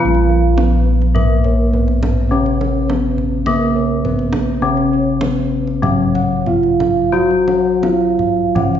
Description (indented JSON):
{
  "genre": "Javanese gamelan",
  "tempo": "79-104 BPM",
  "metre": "4/4",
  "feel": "straight",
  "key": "Bb pelog",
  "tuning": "A4 = 440 Hz",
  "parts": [
    { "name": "gamelan-type bronze metallophone", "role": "melody", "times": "0.0-8.8 s", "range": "Bb3 to Gb4-20c", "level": "-18 LUFS", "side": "right 2 dB", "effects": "none" },
    { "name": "gamelan-type bronze metallophone", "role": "accompaniment", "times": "0.0-8.8 s", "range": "Db3-30c to Bb3", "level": "-20 LUFS", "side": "left 5 dB", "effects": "none" },
    { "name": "gamelan-type bossed gongs", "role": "arpeggios", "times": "0.0-8.8 s", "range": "Bb4 to Gb5-20c", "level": "-28 LUFS", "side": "equal", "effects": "none" },
    { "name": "gamelan-type bronze metallophone", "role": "arpeggios", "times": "0.0-8.8 s", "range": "Bb4 to Gb5-20c", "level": "-26 LUFS", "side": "right 6 dB", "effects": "none" },
    { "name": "gamelan-type bossed gongs", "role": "bass", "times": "0.0-8.8 s", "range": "Bb1 to Gb4-20c", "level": "-18 LUFS", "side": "equal", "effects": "none" },
    { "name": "kendang", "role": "percussion", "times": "0.1-8.8 s", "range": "none", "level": "-24 LUFS", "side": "right 1 dB", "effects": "none" }
  ],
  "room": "wet recital hall reverb, RT60 1.6 s",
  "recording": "heard from further back in the room, nothing above 7.6 kHz",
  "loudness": "-13 LUFS",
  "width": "side -9 dB against mid",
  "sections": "0.0-8.8 A section",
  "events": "none",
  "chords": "none",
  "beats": "| 0.00 0.58 1.16 1.73 | 2.31 2.89 3.47 4.04 | 4.62 5.21 5.83 6.46 | 7.13 7.83 8.56"
}